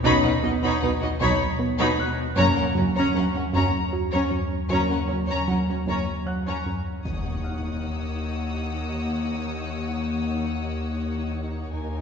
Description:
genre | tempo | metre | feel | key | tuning
cinematic, suspense film score | 77 BPM | 3/4 | straight | Eb minor | A4 = 440 Hz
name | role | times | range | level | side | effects
rich chamber violin section | second line | 0.0-12.0 s | F#4 to C#5 | -32 LUFS | left 2 dB | none
warm studio viola section | accompaniment | 0.0-12.0 s | Db4 to D#4 | -30 LUFS | right 2 dB | none
mellow French horn section | sustained chords | 0.0-5.0 s | Bb3 to D#4 | -29 LUFS | left 4 dB | none
plucky analog bass | riff | 0.0-6.9 s | Gb2 to B3 | -27 LUFS | right 2 dB | none
rich chamber double bass section | bass | 0.0-12.0 s | Gb1 to Eb2 | -31 LUFS | equal | none
rich studio cello section | bass | 0.0-12.0 s | Eb2 to B2 | -32 LUFS | right 1 dB | none
pure sine sub bass | drone | 0.0-12.0 s | D#2 | -32 LUFS | left 1 dB | none
bright grand piano | texture | 0.0-11.7 s | Gb5 to Ab6 | -39 LUFS | equal | none
rich studio violin section | melody | 0.1-12.0 s | Db5 to B5 | -31 LUFS | left 3 dB | none
bright chamber violin section | texture | 7.0-11.3 s | Eb6 to Fb6 | -38 LUFS | left 4 dB | none
impact | sound effects | 7.1-9.4 s | none | -35 LUFS | left 1 dB | none
room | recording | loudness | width
wet concert hall reverb, RT60 2.0 s | heard from further back in the room, nothing above 7.8 kHz | -22 LUFS | side -6 dB against mid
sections
0.0-7.0 A section; 7.0-12.0 B section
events
impact 7.0-9.4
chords
0.0 Badd9; 2.4 Gb; 7.0 Ebm7

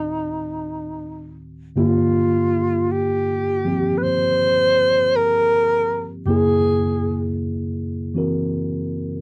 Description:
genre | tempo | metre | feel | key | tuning
jazz ballad | 53 BPM | 4/4 | swing 67% on 8ths | unclear | A4 = 440 Hz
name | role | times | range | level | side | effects
breathy alto saxophone | melody | 0.0-7.3 s | Eb4 to C5 | -21 LUFS | equal | none
tine electric piano | accompaniment | 0.0-9.2 s | D2 to A#4 | -24 LUFS | equal | none
room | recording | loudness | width
moderate booth ambience, RT60 0.2 s | dry, close 1970s-style studio recording | -20 LUFS | mono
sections
0.0-9.2 A section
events
none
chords
0.0 D7b9; 1.8 Gm7; 6.3 F#9

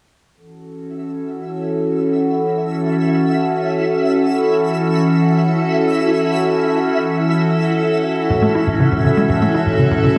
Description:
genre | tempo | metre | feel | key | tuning
ambient | free time | none | none | unclear | A4 = 440 Hz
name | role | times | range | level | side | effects
evolving wavetable pad | sustained chords | 0.7-10.2 s | E3 to A4 | -18 LUFS | equal | phaser, built-in reverb
twinkling granular texture | texture | 2.0-10.2 s | E4 to E5 | -26 LUFS | equal | built-in reverb, ensemble chorus
tight sequencer bass | riff | 8.3-10.1 s | A2 to E4 | -18 LUFS | equal | cassette tape, tape echo
room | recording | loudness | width
wet huge ambient reverb, RT60 7.9 s | dreamy mix soaked in reverb, small room ambience | -17 LUFS | mono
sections
0.4-8.3 A section; 8.3-10.2 B section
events
fade-in on synth texture 0.4-8.3; filter sweep on ambient pad 0.4-8.3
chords
0.4 A6

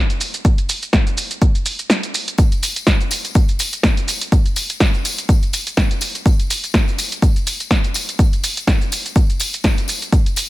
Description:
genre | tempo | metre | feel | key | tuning
house | 124 BPM | 4/4 | swing 56% on 16ths | none | none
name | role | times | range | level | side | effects
punchy analog drum machine | drums | 0.1-10.5 s | hi-hat, shaker, snare drum | -20 LUFS | right 1 dB | sidechain pumping on hats, sidechain pumping on perc
electronic kick drum | drums | 0.4-10.2 s | none | -15 LUFS | equal | none
tambourine | percussion | 2.4-10.5 s | none | -28 LUFS | left 8 dB | sidechain pumping on perc
room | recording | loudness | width
digital ambience | none | -15 LUFS | side -18 dB against mid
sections
0.0-10.5 A section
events
kick drops out 1.9-2.4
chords
none

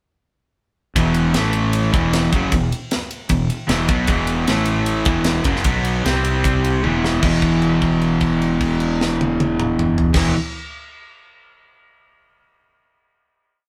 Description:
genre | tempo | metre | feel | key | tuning
hard rock | 153 BPM | 4/4 | straight | E minor | A4 = 437 Hz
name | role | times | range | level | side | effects
cranked stack guitar | riff | 1.0-10.3 s | E2 to C4 | -23 LUFS | equal | overdrive
overdriven semi-hollow guitar | riff | 1.0-10.3 s | E2 to C4 | -24 LUFS | equal | none
fuzz fingered electric bass | bass | 1.0-10.3 s | E1 to C2 | -26 LUFS | equal | overdrive
tight metal drum kit | drums | 1.0-10.2 s | crash cymbal, kick drum, ride cymbal, snare drum, toms | -25 LUFS | equal | none
room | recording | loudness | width
moderate studio reverb, RT60 0.7 s | band playing live in one room | -18 LUFS | mono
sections
1.0-7.2 riff; 7.2-10.4 final chord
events
drum fill 6.8-7.2; held note 7.2-10.2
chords
1.0 E5; 1.4 A5; 1.9 E5; 4.5 A5; 5.1 E5; 5.7 B5; 6.1 C5; 6.8 E5

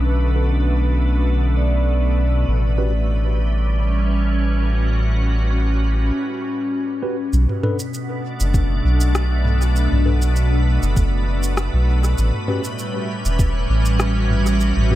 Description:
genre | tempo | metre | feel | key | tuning
ambient dub | 99 BPM | 4/4 | swing 53% on 16ths | B minor | A4 = 439 Hz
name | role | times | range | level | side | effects
soft additive organ-like pad | sustained chords | 0.0-15.0 s | A2 to B4 | -24 LUFS | right 1 dB | ensemble chorus, built-in reverb
vibraphone with soft mallets | arpeggios | 0.0-7.3 s | C#4 to D5 | -27 LUFS | left 2 dB | low-pass filter, analog delay
soft dub sub bass | bass | 0.0-15.0 s | E1 to B1 | -17 LUFS | equal | none
mellow tine electric piano | stabs | 0.4-2.9, 7.0-15.0 s | C#4 to B4 | -29 LUFS | equal | medium stereo tremolo, low-pass filter, dub echo
organic electronic drum kit | drums | 7.3-15.0 s | rim click, shaker, toms | -26 LUFS | equal | dub echo
electronic kick drum | drums | 8.5-13.5 s | none | -18 LUFS | equal | none
room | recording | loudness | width
light reverb, digital ambience | echo-heavy mix | -17 LUFS | side -14 dB against mid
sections
0.0-7.3 A section; 7.3-15.0 B section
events
break 6.1-7.3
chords
0.0 Bm7; 2.5 A13; 7.3 Bm7; 12.2 A13

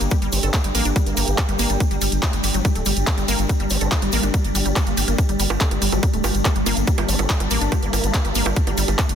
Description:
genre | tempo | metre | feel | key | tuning
psychedelic trance | 142 BPM | 4/4 | straight | G minor | A4 = 444 Hz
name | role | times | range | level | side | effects
swarming drone | sustained chords | 0.1-9.2 s | G3 | -28 LUFS | equal | built-in reverb, sidechain pumping
round analog bass | bass | 0.0-9.2 s | D1 to A1 | -23 LUFS | equal | none
drum and bass drum kit | drums | 0.0-9.2 s | bongos, handclaps, hi-hat | -25 LUFS | right 3 dB | overdrive
tube shaker | percussion | 0.0-9.2 s | none | -32 LUFS | left 7 dB | none
deep dark ambient pad | texture | 0.0-9.2 s | D4 to A5 | -30 LUFS | equal | chorus, built-in reverb, sidechain pumping
wide unison pluck | riff | 0.1-9.1 s | F#3 to A4 | -26 LUFS | moving between left 3 dB and right 3 dB | auto-pan, sidechain pumping, tape echo
electronic kick drum | drums | 0.1-9.1 s | none | -19 LUFS | equal | overdrive
vowel-sweep wobble bass | second line | 0.3-3.9, 7.1-8.4 s | Bb3 to C4 | -35 LUFS | right 3 dB | chorus, sidechain pumping, high-pass filter, tape echo
room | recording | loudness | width
light reverb, digital ambience | dense, heavily limited modern master | -17 LUFS | side -8 dB against mid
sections
0.0-9.2 A section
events
none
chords
0.0 G5

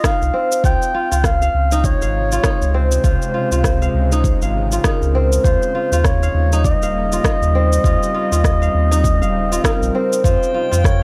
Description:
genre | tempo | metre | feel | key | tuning
organic downtempo | 100 BPM | 4/4 | swing 58% on 16ths | unclear | A4 = 437 Hz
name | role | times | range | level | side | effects
breathy clarinet | melody | 0.0-11.0 s | Bb4 to G5 | -24 LUFS | equal | analog delay
kora | arpeggios | 0.0-11.0 s | C4 to F5 | -24 LUFS | equal | low-pass filter, tape echo
electronic kick drum | drums | 0.0-11.0 s | none | -20 LUFS | equal | none
electronic rim click and cabasa | drums | 0.0-11.0 s | none | -26 LUFS | equal | none
warm sub bass | bass | 0.2-11.0 s | Eb1 to F2 | -20 LUFS | equal | tube saturation, sidechain pumping
bowed-like drone | sustained chords | 1.6-11.0 s | C3 to F4 | -28 LUFS | equal | built-in reverb, sidechain pumping
drifting glass-harmonics texture | texture | 10.3-11.0 s | G5 | -36 LUFS | equal | chorus, built-in reverb
room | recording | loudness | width
digital ambience | dry, gritty hardware recording, cassette tape | -17 LUFS | mono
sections
0.0-10.2 A section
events
none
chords
0.0 F7(no3); 0.6 Dbmaj7; 5.4 Eb7; 10.2 Fm7

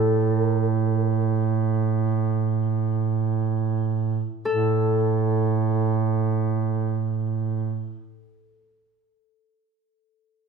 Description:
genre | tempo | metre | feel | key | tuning
caucasian folk, Caucasian lament | free time | none | none | unclear | A4 = 440 Hz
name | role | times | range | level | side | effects
Celtic harp | melody | 0.0-8.0 s | G4 to A4 | -28 LUFS | left 4 dB | none
mellow duduk | drone | 0.0-8.0 s | A2 | -22 LUFS | right 5 dB | none
room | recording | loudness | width
moderate large studio reverb, RT60 1.2 s | band playing live in one room | -21 LUFS | side -5 dB against mid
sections
0.0-4.5 A section; 4.5-8.7 B section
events
slowing down 0.0-4.5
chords
none

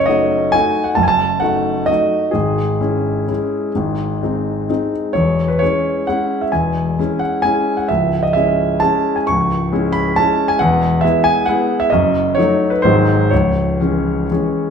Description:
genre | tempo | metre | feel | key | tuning
classical, piano waltz | 120-143 BPM | 3/4 | rubato | C# minor | A4 = 439 Hz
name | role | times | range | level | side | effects
clear concert grand piano | solo | 0.0-14.7 s | C#1 to C#6 | -14 LUFS | equal | none
room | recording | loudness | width
wet stone room reverb, RT60 1.3 s | minimal, uncompressed stereo recording | -14 LUFS | side -6 dB against mid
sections
0.0-14.7 A section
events
none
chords
0.0 D#dim/F#; 2.4 C#m/G#; 3.8 G#; 5.2 C#m/E; 7.9 C#m; 10.6 E; 11.9 D#dim/F#; 12.8 G#7; 13.3 C#m

